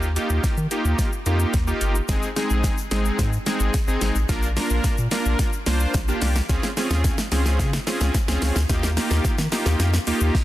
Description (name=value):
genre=dance-pop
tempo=109 BPM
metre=4/4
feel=straight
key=unclear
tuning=A4 = 441 Hz
part: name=big bright polysynth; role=accompaniment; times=0.0-10.3 s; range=Ab3 to C5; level=-25 LUFS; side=right 1 dB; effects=sidechain pumping
part: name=round analog bass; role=bass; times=0.0-10.3 s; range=G1 to Eb3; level=-22 LUFS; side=equal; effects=sidechain pumping
part: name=smooth R&B drum kit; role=drums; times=0.0-10.4 s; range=hi-hat, kick drum, shaker, snare drum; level=-24 LUFS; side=equal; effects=none
part: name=egg shaker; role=percussion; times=2.1-10.3 s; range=none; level=-42 LUFS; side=left 8 dB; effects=none
room=digital ambience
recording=dense, heavily limited modern master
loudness=-20 LUFS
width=side -15 dB against mid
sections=0.0-10.4 A section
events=build-up 0.0-10.4; drum fill 0.0-10.3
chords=0.0 Ebadd9; 2.1 Ab; 4.3 Bb; 6.5 Dbmaj7; 8.7 Ebadd9